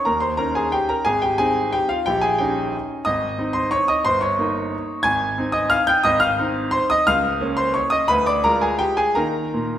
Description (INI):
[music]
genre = classical, piano waltz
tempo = 155-188 BPM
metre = 3/4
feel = rubato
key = Ab major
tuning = A4 = 438 Hz
[part]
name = clear grand piano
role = solo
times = 0.0-9.8 s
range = G1 to Ab6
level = -18 LUFS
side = equal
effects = none
[sound]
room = wet scoring stage reverb, RT60 1.6 s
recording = none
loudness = -18 LUFS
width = side -11 dB against mid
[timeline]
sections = 0.0-9.8 A section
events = none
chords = 0.0 Eb7; 1.1 Ab; 2.1 Eb7/Bb; 3.1 Ab; 4.1 Eb7/G; 5.1 Ab; 7.1 Bbm/Db; 8.1 Ddim7; 9.2 Eb5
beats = | 0.06 0.39 0.74 | 1.07 1.41 1.75 | 2.08 2.40 2.74 | 3.07 3.40 3.73 | 4.07 4.39 4.73 | 5.06 5.39 5.73 | 6.07 6.41 6.75 | 7.09 7.42 7.77 | 8.11 8.45 8.81 | 9.17 9.55